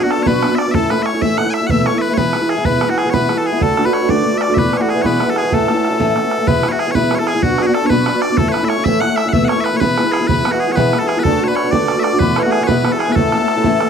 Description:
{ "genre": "celtic folk, Celtic jig", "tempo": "126 BPM (dotted quarters)", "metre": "6/8", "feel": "straight", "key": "unclear", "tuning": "A4 = 441 Hz", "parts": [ { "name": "loud bright bagpipes", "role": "melody", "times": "0.0-13.9 s", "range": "F#4 to G#5", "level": "-20 LUFS", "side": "left 1 dB", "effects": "none" }, { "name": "cimbalom", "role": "second line", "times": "0.0-13.9 s", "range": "F#4 to D5", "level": "-23 LUFS", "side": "right 5 dB", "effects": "none" }, { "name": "tin whistle", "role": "second line", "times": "0.0-13.8 s", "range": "F#5 to F#6", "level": "-24 LUFS", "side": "left 7 dB", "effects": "none" }, { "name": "fingerpicked twelve-string acoustic guitar", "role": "accompaniment", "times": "0.0-13.9 s", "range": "E2 to F#4", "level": "-16 LUFS", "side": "left 1 dB", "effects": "none" }, { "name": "bodhran", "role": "percussion", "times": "0.1-13.9 s", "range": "none", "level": "-21 LUFS", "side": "right 6 dB", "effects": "none" } ], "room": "studio reverb", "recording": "dry, close 1970s-style studio recording", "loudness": "-13 LUFS", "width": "side -7 dB against mid", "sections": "0.0-6.5 A section; 6.5-13.9 A section", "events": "none", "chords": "0.0 Bm; 0.7 A; 1.7 Esus4; 2.2 E; 3.6 D; 4.6 Esus4; 5.0 E; 5.5 A; 6.5 E; 7.4 Bm; 8.4 A; 9.3 Esus4; 9.8 E; 11.2 D; 12.2 Esus4; 12.7 E; 13.2 A" }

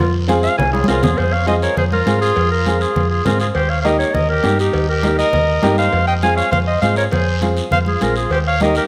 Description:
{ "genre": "latin, cumbia", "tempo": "202 BPM", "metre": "4/4", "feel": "straight", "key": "F minor", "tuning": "A4 = 439 Hz", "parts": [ { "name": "clear clarinet", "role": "melody", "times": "0.0-8.8 s", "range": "F4 to Ab5", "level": "-21 LUFS", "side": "equal", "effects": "none" }, { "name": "hollow-body short-scale fingered electric bass", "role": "bass", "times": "0.0-8.8 s", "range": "Bb1 to Ab2", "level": "-22 LUFS", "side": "equal", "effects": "none" }, { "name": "congas", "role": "percussion", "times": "0.0-8.8 s", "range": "none", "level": "-26 LUFS", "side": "equal", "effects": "none" }, { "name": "clear upright piano", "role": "accompaniment", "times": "0.3-8.8 s", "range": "Bb3 to Ab4", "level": "-24 LUFS", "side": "equal", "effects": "none" }, { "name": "cowbell and timbales", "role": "percussion", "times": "0.3-8.8 s", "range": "none", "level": "-30 LUFS", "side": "equal", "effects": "none" }, { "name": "guiro", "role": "percussion", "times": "0.3-8.9 s", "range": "none", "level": "-34 LUFS", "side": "equal", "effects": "none" }, { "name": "clear trumpet", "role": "second line", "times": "0.7-8.8 s", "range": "Eb4 to F5", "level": "-28 LUFS", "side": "equal", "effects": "tape echo" } ], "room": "moderate recital hall reverb, RT60 1.4 s", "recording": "none", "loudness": "-16 LUFS", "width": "mono", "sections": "0.0-1.2 A section; 1.2-8.9 B section", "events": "clarinet solo 0.0-1.2; drum fill 0.6-1.2", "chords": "0.0 Fm; 3.6 Eb; 5.9 Fm; 8.3 Eb" }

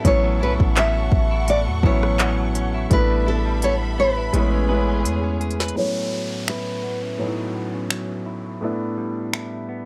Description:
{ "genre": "contemporary R&B", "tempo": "84 BPM", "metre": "4/4", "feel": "swing 54% on 16ths", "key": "A major", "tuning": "A4 = 441 Hz", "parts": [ { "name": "warm baby grand piano", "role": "accompaniment", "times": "0.0-9.9 s", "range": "A2 to E4", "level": "-29 LUFS", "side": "equal", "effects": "low-pass filter" }, { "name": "dark studio string section", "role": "sustained chords", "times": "0.0-5.8 s", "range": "G#4 to C#6", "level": "-34 LUFS", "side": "equal", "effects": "low-pass filter" }, { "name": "direct-recorded clean electric guitar", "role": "arpeggios", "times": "0.0-9.9 s", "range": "A2 to B4", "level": "-33 LUFS", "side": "equal", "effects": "lush chorus, low-pass filter, tape echo" }, { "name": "warm 808-style bass", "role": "bass", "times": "0.0-5.7 s", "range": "A1 to E2", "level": "-24 LUFS", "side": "equal", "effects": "none" }, { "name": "smooth R&B drum kit", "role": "drums", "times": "0.0-9.5 s", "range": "finger snaps, handclaps, hi-hat, kick drum, rim click, snare drum", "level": "-23 LUFS", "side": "equal", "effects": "overdrive" }, { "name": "nylon-string guitar", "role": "melody", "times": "0.1-8.2 s", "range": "A4 to E5", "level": "-26 LUFS", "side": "equal", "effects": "low-pass filter, tape echo" }, { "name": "downlifter", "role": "sound effects", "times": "5.8-9.9 s", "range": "none", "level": "-38 LUFS", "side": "equal", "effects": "none" } ], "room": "light reverb", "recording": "none", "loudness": "-22 LUFS", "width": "mono", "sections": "0.0-5.8 A section; 5.8-9.9 B section", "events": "drum fill 2.9-5.8; filter sweep 5.8-9.9", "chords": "0.1 A6; 2.9 G69/A; 4.3 Amaj9; 5.8 A6; 8.6 G69/A" }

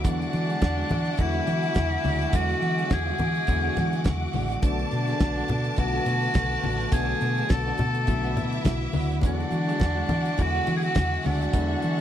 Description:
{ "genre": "disco", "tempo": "104 BPM", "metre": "4/4", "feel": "swing 56% on 16ths", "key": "unclear", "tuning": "A4 = 439 Hz", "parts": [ { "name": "breathy alto saxophone", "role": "melody", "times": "0.0-12.0 s", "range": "D4 to A4", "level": "-28 LUFS", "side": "equal", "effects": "none" }, { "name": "warm studio violin section", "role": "second line", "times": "0.0-12.0 s", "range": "A3 to A5", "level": "-34 LUFS", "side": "right 2 dB", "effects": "none" }, { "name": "electric guitar at the edge of break-up", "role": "accompaniment", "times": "0.0-12.0 s", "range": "G#3 to G#4", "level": "-37 LUFS", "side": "right 8 dB", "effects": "none" }, { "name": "tine electric piano", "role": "accompaniment", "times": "0.0-12.0 s", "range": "D3 to F#4", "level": "-32 LUFS", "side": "left 6 dB", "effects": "none" }, { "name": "dark symphonic string section", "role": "sustained chords", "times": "0.0-12.0 s", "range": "F#4 to D6", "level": "-37 LUFS", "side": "left 1 dB", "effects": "none" }, { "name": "hollow-body short-scale fingered electric bass", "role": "bass", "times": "0.0-12.0 s", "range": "A1 to E3", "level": "-28 LUFS", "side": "equal", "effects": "none" }, { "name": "damped 70s drum kit", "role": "drums", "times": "0.0-12.0 s", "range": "hi-hat, kick drum, snare drum", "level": "-24 LUFS", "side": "right 1 dB", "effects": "none" }, { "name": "congas", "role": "percussion", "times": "0.0-12.0 s", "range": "none", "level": "-32 LUFS", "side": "left 3 dB", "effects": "none" } ], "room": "studio ambience", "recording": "dry, close 1970s-style studio recording", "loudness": "-22 LUFS", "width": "side -10 dB against mid", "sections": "0.0-12.0 A section", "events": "none", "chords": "0.0 E9; 4.6 Bm7; 9.2 E9" }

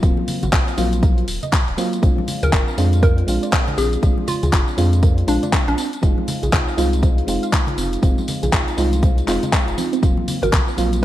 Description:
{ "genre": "deep house", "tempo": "120 BPM", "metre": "4/4", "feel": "swing 60% on 16ths", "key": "Eb dorian", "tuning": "A4 = 440 Hz", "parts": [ { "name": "soft round pluck", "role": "arpeggios", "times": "0.0-11.0 s", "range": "C4 to F5", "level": "-29 LUFS", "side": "right 4 dB", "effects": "none" }, { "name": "mellow FM electric piano", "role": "stabs", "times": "0.0-11.0 s", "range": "Gb3 to F4", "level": "-24 LUFS", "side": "right 1 dB", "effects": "chorus, sidechain pumping, ping-pong delay" }, { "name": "round analog bass", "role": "bass", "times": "0.0-11.0 s", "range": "Eb1 to F2", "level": "-20 LUFS", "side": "equal", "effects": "sidechain pumping" }, { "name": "deep house drum kit", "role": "drums", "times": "0.0-11.0 s", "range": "handclaps, hi-hat, tambourine", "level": "-24 LUFS", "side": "left 1 dB", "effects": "gated reverb" }, { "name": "electronic kick drum", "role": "drums", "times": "0.0-10.6 s", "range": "none", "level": "-17 LUFS", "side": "equal", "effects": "none" }, { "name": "congas", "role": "percussion", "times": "0.2-10.5 s", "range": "none", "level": "-29 LUFS", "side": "left 1 dB", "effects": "none" }, { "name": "hollow square pluck", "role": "melody", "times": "2.4-5.8, 10.4-11.0 s", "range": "D4 to Bb4", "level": "-25 LUFS", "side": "equal", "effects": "chorus, digital delay" } ], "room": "light reverb, digital ambience", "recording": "bright 1980s-style digital production, lossy compression artefacts", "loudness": "-16 LUFS", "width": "side -14 dB against mid", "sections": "0.0-11.0 A section", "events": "none", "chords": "0.0 Ebm69; 2.0 Bb9; 5.8 Fm7; 10.0 Ebm69 (rootless)" }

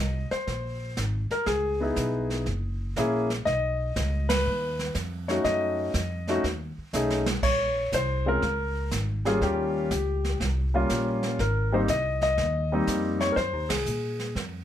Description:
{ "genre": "jazz piano trio", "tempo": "121 BPM", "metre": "4/4", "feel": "swing 67% on 8ths", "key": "Ab major", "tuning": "A4 = 441 Hz", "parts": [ { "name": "warm concert grand piano", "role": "melody", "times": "0.0-14.3 s", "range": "G3 to Eb5", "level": "-26 LUFS", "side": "left 2 dB", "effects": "none" }, { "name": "upright bass", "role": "bass", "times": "0.0-14.6 s", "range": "Gb1 to Bb2", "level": "-30 LUFS", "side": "equal", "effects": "none" }, { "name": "jazz brush drum kit", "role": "drums", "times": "0.3-14.6 s", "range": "brushed snare drum, crash cymbal, hi-hat, kick drum, ride cymbal, snare drum", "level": "-33 LUFS", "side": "right 3 dB", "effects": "none" } ], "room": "light reverb", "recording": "none", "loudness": "-24 LUFS", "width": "side -10 dB against mid", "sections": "0.0-14.6 A section", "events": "band accent 4.2, 13.6; drum fill 6.9-7.4", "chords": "0.0 Ab; 1.5 Dbm7; 2.5 Gb7; 3.5 B; 5.5 B9; 7.4 Bbm7; 9.4 Eb7; 11.4 Abmaj7; 13.4 Cm7b5" }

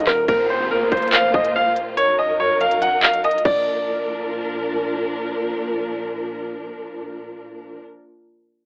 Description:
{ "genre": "hip hop, drill", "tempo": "142 BPM", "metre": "4/4", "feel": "half-time", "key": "unclear", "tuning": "A4 = 438 Hz", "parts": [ { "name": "bright concert grand piano", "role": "melody", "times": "0.0-4.9 s", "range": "Bb4 to Gb5", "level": "-21 LUFS", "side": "equal", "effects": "cassette tape" }, { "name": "dark symphonic string section", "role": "sustained chords", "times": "0.0-7.8 s", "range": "Gb2 to C5", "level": "-27 LUFS", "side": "equal", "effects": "cassette tape" }, { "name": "drill drum kit", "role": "drums", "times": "0.0-3.5 s", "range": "crash cymbal, handclaps, hi-hat, kick drum, rim click", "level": "-22 LUFS", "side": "equal", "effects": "cassette tape" }, { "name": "downlifter", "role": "sound effects", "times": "0.3-3.7 s", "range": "none", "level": "-34 LUFS", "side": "equal", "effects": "none" } ], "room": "moderate small room reverb, RT60 0.5 s", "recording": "home recording on cassette, AM radio sound", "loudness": "-20 LUFS", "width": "mono", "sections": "0.3-3.7 A section; 3.7-7.0 B section", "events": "kick muted 2.0-3.7", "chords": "0.3 Bbsus2; 2.0 Gb6; 3.5 Bb" }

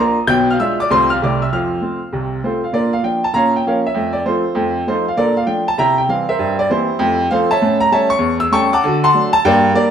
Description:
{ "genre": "jazz, stride piano", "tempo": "197 BPM", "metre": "4/4", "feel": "swing 64% on 8ths", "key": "F major", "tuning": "A4 = 440 Hz", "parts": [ { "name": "warm baby grand piano", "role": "solo", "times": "0.0-9.9 s", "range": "B1 to G6", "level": "-13 LUFS", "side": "equal", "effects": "none" } ], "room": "wet large studio reverb, RT60 1.2 s", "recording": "band playing live in one room", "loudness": "-14 LUFS", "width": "side -8 dB against mid", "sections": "0.0-2.7 A section; 2.7-9.9 B section", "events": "none", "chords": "0.3 Bdim7; 0.9 F/C; 1.2 C69; 1.5 F; 2.7 Bb; 3.3 Bbm; 3.9 F; 4.6 F7; 5.2 Bbmaj7; 5.8 C7; 6.4 C7/G; 7.0 F; 7.6 A7; 8.8 D7" }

